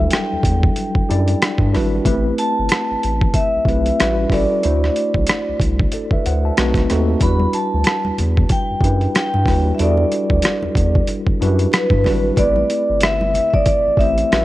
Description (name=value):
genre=R&B, neo-soul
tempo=93 BPM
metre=4/4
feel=swing 59% on 16ths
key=E minor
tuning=A4 = 440 Hz
part: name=mellow tine electric piano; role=accompaniment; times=0.0-14.4 s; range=F#3 to A5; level=-21 LUFS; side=left 1 dB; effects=overdrive, fast stereo tremolo
part: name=round analog bass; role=bass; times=0.0-14.4 s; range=G1 to G2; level=-19 LUFS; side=equal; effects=none
part: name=vibraphone with medium hard mallets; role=melody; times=0.1-14.4 s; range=B4 to B5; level=-20 LUFS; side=equal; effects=none
part: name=boom bap sampler-style drum kit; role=drums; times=0.1-14.4 s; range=hi-hat, kick drum, rim click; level=-18 LUFS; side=equal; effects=overdrive
part: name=congas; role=percussion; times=7.2-13.8 s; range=none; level=-29 LUFS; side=right 1 dB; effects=none
room=little or no reverb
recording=worn, warbling old tape, cassette tape, warbly pitch drift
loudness=-14 LUFS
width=side -16 dB against mid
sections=0.0-14.4 A section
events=none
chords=0.0 Em9; 2.0 Am7; 4.0 A13; 4.6 D7; 6.6 B7b9; 7.2 Em9; 12.4 Am7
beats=0.12 0.76 1.41 | 2.05 2.69 3.34 3.99 | 4.63 5.28 5.92 6.57 | 7.21 7.86 8.50 9.15 | 9.79 10.44 11.08 11.73 | 12.37 13.02 13.66 14.31